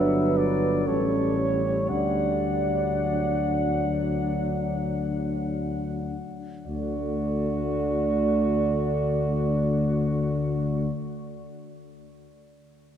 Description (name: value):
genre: classical, hymn-like piece for brass band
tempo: free time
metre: none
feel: none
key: D major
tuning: A4 = 439 Hz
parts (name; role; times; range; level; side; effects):
- warm cornet; melody; 0.0-10.9 s; F#4 to F#5; -34 LUFS; left 6 dB; none
- mellow French horn section; second line; 0.0-10.9 s; A4 to D5; -29 LUFS; right 4 dB; none
- clear trombone; accompaniment; 0.0-10.9 s; D3 to G3; -31 LUFS; right 1 dB; none
- dark euphonium; accompaniment; 0.0-10.9 s; A3 to D4; -30 LUFS; left 1 dB; none
- mellow tuba; bass; 0.0-10.9 s; G1 to D2; -29 LUFS; left 2 dB; none
room: wet cathedral reverb, RT60 4.7 s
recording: dark, warm production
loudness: -23 LUFS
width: side -9 dB against mid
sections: 0.0-6.7 A section; 6.7-11.7 B section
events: slowing down 0.0-6.7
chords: 0.0 Gmaj7; 0.9 A7; 1.9 D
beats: free time